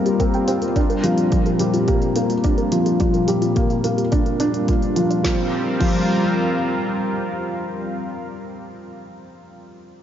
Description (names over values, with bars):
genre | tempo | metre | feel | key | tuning
piano and strings electronica | 107 BPM | 4/4 | straight | G minor | A4 = 440 Hz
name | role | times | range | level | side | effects
lush unison pad | sustained chords | 0.0-8.3 s | Bb2 to Bb4 | -23 LUFS | left 1 dB | chorus
soft round pluck | arpeggios | 0.0-6.0 s | F4 to G5 | -29 LUFS | right 2 dB | none
felt-muted upright piano | riff | 0.0-10.0 s | F3 to F4 | -22 LUFS | equal | diffuse ambient delay
deep house drum kit | drums | 0.1-6.0 s | crash cymbal, hi-hat, snare drum | -33 LUFS | equal | none
electronic kick drum | drums | 0.2-6.0 s | none | -21 LUFS | equal | none
room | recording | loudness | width
wet cathedral reverb, RT60 6.9 s | dreamy mix soaked in reverb, nothing above 7.5 kHz | -17 LUFS | side -10 dB against mid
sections
0.0-5.2 A section; 5.2-7.5 B section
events
filter sweep on analog synth pad 0.0-5.2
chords
0.0 Cm7; 0.8 Gm7/Bb; 5.2 Gm7